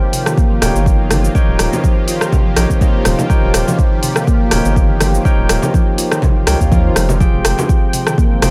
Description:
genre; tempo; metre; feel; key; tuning
afro house; 123 BPM; 4/4; swing 54% on 16ths; unclear; A4 = 439 Hz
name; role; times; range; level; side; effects
warm analog pad; sustained chords; 0.0-8.5 s; Eb3 to G5; -26 LUFS; equal; chorus, sidechain pumping
barky tine electric piano; stabs; 0.0-8.5 s; Eb4 to G5; -24 LUFS; equal; sidechain pumping, digital delay
handpan; arpeggios; 0.1-8.4 s; C3 to F4; -23 LUFS; equal; sidechain pumping, digital delay
deep house drum kit; drums; 0.1-8.5 s; cabasa, hi-hat, rim click; -21 LUFS; equal; overdrive
electronic kick drum; drums; 0.4-8.3 s; none; -16 LUFS; equal; overdrive
round analog bass; bass; 0.6-8.5 s; Eb1 to Eb2; -19 LUFS; equal; sidechain pumping
congas; percussion; 0.6-8.5 s; none; -25 LUFS; equal; none
swell; sound effects; 6.4-7.2 s; none; -34 LUFS; equal; none
room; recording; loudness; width
digital ambience; none; -14 LUFS; mono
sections
0.0-8.5 A section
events
none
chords
0.0 Eb7; 7.2 Fmadd9

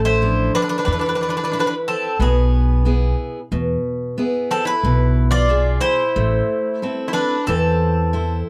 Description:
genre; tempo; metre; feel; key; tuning
greek folk, Greek bouzouki band; 91 BPM; 4/4; straight; unclear; A4 = 440 Hz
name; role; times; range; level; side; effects
picked steel-string acoustic guitar; accompaniment; 0.0-8.5 s; B2 to E5; -26 LUFS; equal; none
upright bass; bass; 0.0-8.4 s; A1 to E2; -21 LUFS; equal; none
Greek bouzouki; melody; 0.1-8.4 s; G#4 to D5; -23 LUFS; equal; none
Greek bouzouki; second line; 0.1-8.4 s; B3 to F4; -29 LUFS; equal; none
room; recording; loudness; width
moderate studio ambience, RT60 0.5 s; dark, warm production; -19 LUFS; mono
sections
0.0-8.5 A section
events
none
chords
0.0 Dm; 0.9 E; 6.2 Am

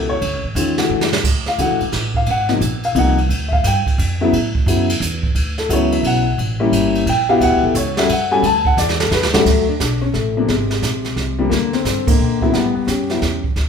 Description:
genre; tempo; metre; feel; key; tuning
jazz piano trio; 175 BPM; 3/4; swing 65% on 8ths; D major; A4 = 440 Hz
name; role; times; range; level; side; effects
warm upright piano; melody; 0.0-13.4 s; B#2 to A5; -17 LUFS; left 2 dB; none
upright bass; bass; 0.0-13.7 s; F#1 to Bb2; -21 LUFS; right 1 dB; none
jazz brush drum kit; drums; 0.2-13.7 s; brushed snare drum, crash cymbal, hi-hat, kick drum, ride cymbal, snare drum; -21 LUFS; right 3 dB; none
room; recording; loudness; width
moderate large studio reverb, RT60 0.9 s; band playing live in one room; -15 LUFS; side -6 dB against mid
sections
0.0-1.2 A section; 1.2-9.5 A section; 9.5-13.7 B section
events
upright piano solo 0.0-9.5; drum fill 0.9-1.2, 8.8-9.5; band accent 12.0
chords
0.0 Dmaj9; 1.2 D; 2.3 G#add9; 3.3 Dmadd11; 4.3 A5; 5.3 Dmaj9; 6.4 A7b9; 7.4 Dmaj9; 9.5 D5; 10.5 G#add9; 11.5 Bb69; 12.5 A13

